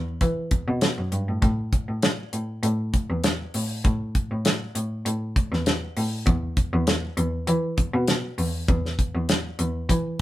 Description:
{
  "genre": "straight-eighth soul blues",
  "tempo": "99 BPM",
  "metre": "4/4",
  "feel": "swing 54% on 16ths",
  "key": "unclear",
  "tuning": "A4 = 440 Hz",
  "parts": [
    { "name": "bright cello", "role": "bass", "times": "0.0-10.0 s", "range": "E2 to E3", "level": "-26 LUFS", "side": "equal", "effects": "none" },
    { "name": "damped 70s drum kit", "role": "drums", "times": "0.2-10.0 s", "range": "hi-hat, kick drum, snare drum", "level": "-23 LUFS", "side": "equal", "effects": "none" }
  ],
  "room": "moderate small room reverb, RT60 0.5 s",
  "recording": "band playing live in one room",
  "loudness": "-22 LUFS",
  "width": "side -15 dB against mid",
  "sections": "0.0-10.2 A section",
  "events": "none",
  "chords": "none"
}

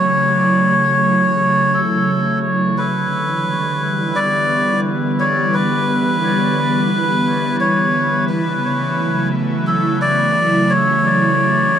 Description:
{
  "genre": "ambient",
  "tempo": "87 BPM",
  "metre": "4/4",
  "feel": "straight",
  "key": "E dorian",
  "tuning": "A4 = 441 Hz",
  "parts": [
    { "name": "melodica", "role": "melody", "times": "0.0-11.8 s", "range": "A4 to D5", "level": "-16 LUFS", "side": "equal", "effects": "dub echo" },
    { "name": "airy breathy pad", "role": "sustained chords", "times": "0.0-11.8 s", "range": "C#3 to E4", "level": "-17 LUFS", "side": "equal", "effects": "chorus" }
  ],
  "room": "wet echo chamber reverb, RT60 1.7 s, studio ambience",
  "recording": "dark, warm production",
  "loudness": "-14 LUFS",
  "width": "side -9 dB against mid",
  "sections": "0.0-11.8 A section",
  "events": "none",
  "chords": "0.0 F#m7; 2.8 Em7; 8.3 F#m7"
}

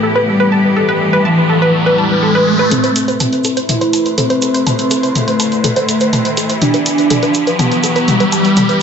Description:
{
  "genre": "melodic techno",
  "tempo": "123 BPM",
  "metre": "4/4",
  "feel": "straight",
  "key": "A minor",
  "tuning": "A4 = 440 Hz",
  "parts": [
    { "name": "fat analog lead", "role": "melody", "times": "0.0-8.8 s", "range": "E3 to E4", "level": "-15 LUFS", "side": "equal", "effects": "wide subtle chorus, dub echo" },
    { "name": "rich symphonic string section", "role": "sustained chords", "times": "0.0-8.8 s", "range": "E3 to C5", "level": "-20 LUFS", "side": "equal", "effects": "low-pass filter" },
    { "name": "wide unison pluck", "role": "arpeggios", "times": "0.0-8.8 s", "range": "A4 to A5", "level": "-18 LUFS", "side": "equal", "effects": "dub echo" },
    { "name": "analog drone", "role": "drone", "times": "0.0-2.8 s", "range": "A2 to A3", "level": "-26 LUFS", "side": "left 1 dB", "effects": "chorus" },
    { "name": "riser", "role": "sound effects", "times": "0.0-8.8 s", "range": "none", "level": "-19 LUFS", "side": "equal", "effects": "none" },
    { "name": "punchy analog drum machine", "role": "drums", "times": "2.7-8.8 s", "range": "hi-hat, toms", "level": "-18 LUFS", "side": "left 1 dB", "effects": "none" },
    { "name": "egg shaker", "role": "percussion", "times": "2.7-8.8 s", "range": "none", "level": "-27 LUFS", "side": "right 3 dB", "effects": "none" }
  ],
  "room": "moderate echo chamber reverb, RT60 1.8 s",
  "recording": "echo-heavy mix, nothing above 7.9 kHz",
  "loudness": "-11 LUFS",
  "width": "side -7 dB against mid",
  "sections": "0.0-2.7 A section; 2.7-8.8 B section",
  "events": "riser 0.0-2.7, 2.7-8.8; filter sweep on analog synth lead 0.0-2.7; build-up 2.7-8.8; drum fill 2.7-8.8; filter sweep on synth pluck 2.7-8.8; filter sweep on string section 2.7-8.8",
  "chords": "0.0 Em; 2.7 Amadd9; 6.6 Em"
}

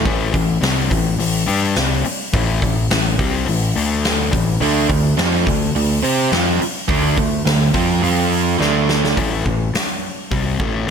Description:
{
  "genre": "hard rock",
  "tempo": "105 BPM",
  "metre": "4/4",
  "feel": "straight",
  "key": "unclear",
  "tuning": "A4 = 441 Hz",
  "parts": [
    { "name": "crunchy overdriven guitar", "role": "riff", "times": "0.0, 4.6-9.2 s", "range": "D3 to C5", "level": "-20 LUFS", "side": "right 15 dB", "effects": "none" },
    { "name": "sludgy distorted guitar", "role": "riff", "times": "0.0-10.9 s", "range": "A2 to C5", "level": "-19 LUFS", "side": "left 5 dB", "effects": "overdrive" },
    { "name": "growling picked electric bass", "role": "bass", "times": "0.0-10.9 s", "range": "G1 to C3", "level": "-22 LUFS", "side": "right 1 dB", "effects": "overdrive" },
    { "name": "huge arena drum kit", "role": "drums", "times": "0.1-10.9 s", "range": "hi-hat, kick drum, snare drum", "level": "-20 LUFS", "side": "equal", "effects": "none" }
  ],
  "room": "light reverb",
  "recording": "none",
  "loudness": "-15 LUFS",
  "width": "side -7 dB against mid",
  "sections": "0.1-9.2 A section; 9.2-10.9 B section",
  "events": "drum fill 8.6-9.2",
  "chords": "0.1 A5; 3.8 D5; 4.3 A5; 4.6 D5; 8.0 F5; 8.6 D5; 9.2 A5"
}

